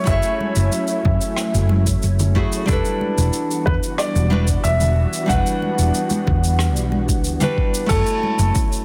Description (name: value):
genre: sunset chillout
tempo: 92 BPM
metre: 4/4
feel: straight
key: F# phrygian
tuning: A4 = 440 Hz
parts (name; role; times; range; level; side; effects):
- dark grand piano; melody; 0.0-8.5 s; A4 to F#5; -27 LUFS; equal; digital delay
- nylon-string guitar; accompaniment; 0.0-8.8 s; G3 to G#5; -27 LUFS; equal; low-pass filter, tape echo
- soft string machine; sustained chords; 0.0-8.8 s; E3 to G#5; -29 LUFS; equal; ensemble chorus
- woody fretless electric bass; bass; 0.1-8.5 s; E1 to F#2; -21 LUFS; equal; none
- electronic kick drum; drums; 0.1-8.7 s; none; -24 LUFS; equal; none
- jazz brush drum kit; drums; 0.1-8.8 s; crash cymbal, rim click, shaker; -31 LUFS; equal; none
- congas; percussion; 0.4-8.4 s; none; -29 LUFS; equal; none
room: light reverb, studio reverb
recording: dense, heavily limited modern master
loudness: -19 LUFS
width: mono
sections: 0.0-7.9 A section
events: none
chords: 0.0 F#m9; 2.7 Em9; 7.9 F#m9